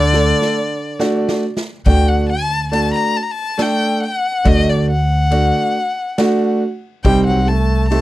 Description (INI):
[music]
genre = klezmer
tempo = 69 BPM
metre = 3/4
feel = straight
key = unclear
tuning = A4 = 441 Hz
[part]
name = warm violin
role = melody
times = 0.0-8.0 s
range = D5 to Bb5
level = -19 LUFS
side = left 3 dB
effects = none
[part]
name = brilliant trombone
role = second line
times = 0.0-1.4, 7.0-8.0 s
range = D3 to A3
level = -23 LUFS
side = right 5 dB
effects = none
[part]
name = upright bass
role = bass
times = 0.0-8.0 s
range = C2 to D2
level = -16 LUFS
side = equal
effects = none
[part]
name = bright upright piano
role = accompaniment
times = 0.1-8.0 s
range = A3 to A4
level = -17 LUFS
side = right 1 dB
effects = none
[part]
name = street-band drum kit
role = drums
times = 0.1-8.0 s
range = kick drum, ride cymbal, snare drum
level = -20 LUFS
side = equal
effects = none
[sound]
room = little or no reverb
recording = dry, close 1970s-style studio recording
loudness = -14 LUFS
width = side -16 dB against mid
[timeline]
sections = 0.0-1.9 A section; 1.9-8.0 A section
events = drum fill 0.1-1.9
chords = 0.0 D; 7.0 Cm